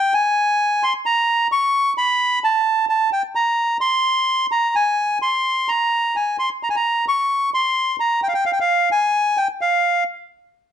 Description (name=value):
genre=tango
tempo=130 BPM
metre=4/4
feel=rubato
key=unclear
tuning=A4 = 441 Hz
part: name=bandoneon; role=solo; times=0.0-10.0 s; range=F5 to Db6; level=-16 LUFS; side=equal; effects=none
room=moderate large studio reverb, RT60 0.9 s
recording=dark, warm production, nothing above 11.0 kHz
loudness=-16 LUFS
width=side -9 dB against mid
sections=0.0-10.7 A section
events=none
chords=none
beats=0.34 0.80 | 1.26 1.72 2.18 2.64 | 3.10 3.56 4.03 4.50 | 4.97 5.44 5.91 6.38 | 6.84 7.29 7.75 8.21 | 8.67 9.13 9.60